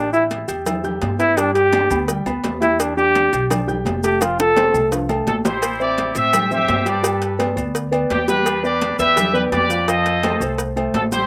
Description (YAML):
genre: latin, salsa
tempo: 169 BPM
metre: 4/4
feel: straight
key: unclear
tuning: A4 = 440 Hz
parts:
  - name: bright trombone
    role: melody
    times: 0.0-4.9 s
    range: D4 to A4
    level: -18 LUFS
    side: equal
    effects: none
  - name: dark baby grand piano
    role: accompaniment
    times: 0.0-11.3 s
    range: F3 to G6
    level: -25 LUFS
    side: equal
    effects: slapback echo
  - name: upright bass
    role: bass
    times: 0.0-11.3 s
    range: F1 to A2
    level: -30 LUFS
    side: equal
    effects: none
  - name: congas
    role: percussion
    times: 0.1-11.3 s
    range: none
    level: -30 LUFS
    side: equal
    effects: none
  - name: maracas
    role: percussion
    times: 0.1-11.3 s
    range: none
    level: -35 LUFS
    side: equal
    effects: none
  - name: cowbell and bongos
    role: percussion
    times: 0.3-11.3 s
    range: none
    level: -30 LUFS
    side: equal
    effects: slapback echo
  - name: timbales and agogo bells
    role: percussion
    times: 0.3-11.1 s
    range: none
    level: -31 LUFS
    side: equal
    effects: slapback echo
  - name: bright trumpet section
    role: melody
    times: 5.3-11.3 s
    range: D4 to E5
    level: -21 LUFS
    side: equal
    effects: none
room: little or no reverb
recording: recorded outdoors, with no room sound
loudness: -18 LUFS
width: mono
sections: 0.0-5.6 A section; 5.6-11.3 B section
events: trombone solo 0.0-5.6; drum fill 4.2-5.6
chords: 0.0 A5; 1.4 G; 2.8 Em7; 4.2 F; 5.6 Am7; 7.0 Gadd9; 8.5 Em7; 9.9 F7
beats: 0.31 0.66 1.02 | 1.37 1.73 2.08 2.44 | 2.79 3.15 3.50 3.86 | 4.21 4.57 4.92 5.27 | 5.63 5.98 6.34 6.69 | 7.04 7.40 7.75 8.11 | 8.46 8.81 9.17 9.52 | 9.88 10.23 10.58 10.94